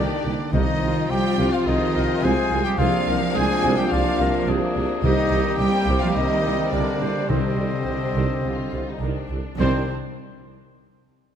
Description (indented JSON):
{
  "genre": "cinematic",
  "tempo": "106 BPM",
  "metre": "4/4",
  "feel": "straight",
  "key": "C minor",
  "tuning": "A4 = 443 Hz",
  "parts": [
    { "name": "warm symphonic violin section", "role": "melody", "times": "0.0-9.9 s", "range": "C5 to Ab5", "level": "-30 LUFS", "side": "left 3 dB", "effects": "none" },
    { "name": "clear clarinet", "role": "second line", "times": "0.0-9.3 s", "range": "Eb4 to Eb5", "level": "-31 LUFS", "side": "left 3 dB", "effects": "none" },
    { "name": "concert flute", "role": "second line", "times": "0.0-9.9 s", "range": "C5 to Ab5", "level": "-31 LUFS", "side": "left 2 dB", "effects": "none" },
    { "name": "warm symphonic violin section", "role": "second line", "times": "0.0-9.9 s", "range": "Bb3 to G4", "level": "-32 LUFS", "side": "left 4 dB", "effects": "none" },
    { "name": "warm symphonic viola section", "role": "accompaniment", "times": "0.0-9.9 s", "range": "C3 to Bb3", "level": "-29 LUFS", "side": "equal", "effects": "none" },
    { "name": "clear French horn section", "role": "sustained chords", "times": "0.0-9.8 s", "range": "D3 to G4", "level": "-30 LUFS", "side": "left 5 dB", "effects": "none" },
    { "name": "clear trombone section", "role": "sustained chords", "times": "0.0-9.8 s", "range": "G2 to G3", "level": "-32 LUFS", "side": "right 3 dB", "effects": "none" },
    { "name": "warm trumpet", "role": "stabs", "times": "0.0-9.8 s", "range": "C4 to C5", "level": "-30 LUFS", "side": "right 1 dB", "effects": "none" },
    { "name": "rich symphonic double bass section", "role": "bass", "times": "0.0-9.9 s", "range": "C2", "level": "-27 LUFS", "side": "right 2 dB", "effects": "none" },
    { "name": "warm symphonic cello section", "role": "bass", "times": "0.0-9.9 s", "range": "C3 to C4", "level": "-28 LUFS", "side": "right 2 dB", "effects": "none" },
    { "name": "warm tuba", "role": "bass", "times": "0.0-9.8 s", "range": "C2", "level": "-29 LUFS", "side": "right 4 dB", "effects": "none" },
    { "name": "timpani", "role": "percussion", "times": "0.5-1.3, 5.0-9.9 s", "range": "C3", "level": "-29 LUFS", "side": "left 3 dB", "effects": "none" }
  ],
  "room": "moderate scoring stage reverb, RT60 2.1 s",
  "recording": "none",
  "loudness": "-19 LUFS",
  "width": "side -8 dB against mid",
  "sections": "0.0-9.6 A section; 9.6-11.4 B section",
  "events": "none",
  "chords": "0.0 Eb; 0.5 Fm7/C; 2.8 Bbadd9/C; 5.0 Cm7; 7.3 Cmadd9"
}